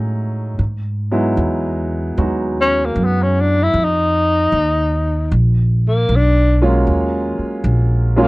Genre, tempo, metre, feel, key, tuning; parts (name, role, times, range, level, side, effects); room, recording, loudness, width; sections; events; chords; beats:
jazz ballad; 76 BPM; 4/4; swing 66% on 8ths; Eb minor; A4 = 441 Hz
clear concert grand piano; accompaniment; 0.0-8.3 s; Gb3 to F#4; -19 LUFS; right 1 dB
upright bass; bass; 0.0-8.3 s; Bb1 to A2; -17 LUFS; equal
breathy tenor saxophone; melody; 2.6-8.3 s; Bb3 to E4; -16 LUFS; left 1 dB
little or no reverb; dry, close 1970s-style studio recording; -14 LUFS; side -22 dB against mid
0.0-8.3 A section
tenor saxophone solo 0.0-8.3
0.0 B13 (rootless); 0.6 Emaj9; 3.8 Ebsus2; 5.3 Bb5; 6.9 Ebm11
| 0.58 1.38 2.17 2.96 | 3.75 4.54 5.32 6.10 | 6.88 7.66